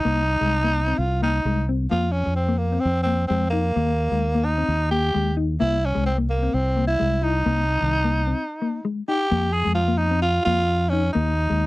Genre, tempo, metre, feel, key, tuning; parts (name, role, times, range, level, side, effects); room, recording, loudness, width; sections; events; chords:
highlife guitar band; 130 BPM; 4/4; straight; A4 = 440 Hz
growling tenor saxophone; melody; 0.0-11.7 s; Bb3 to Ab4; -23 LUFS; right 1 dB
mellow electric guitar; accompaniment; 0.1-11.7 s; Eb3 to E4; -26 LUFS; left 4 dB; tremolo
fingered electric bass; bass; 0.1-11.7 s; C2 to F2; -23 LUFS; equal
little or no reverb; dry, close 1970s-style studio recording; -20 LUFS; side -19 dB against mid
0.0-9.3 A section; 9.3-11.7 B section
break 8.4-9.3
0.0 Ab/C; 1.9 F5; 3.7 Eb; 5.6 C; 7.5 Ab/C (rootless); 9.3 N.C.; 11.2 Eb5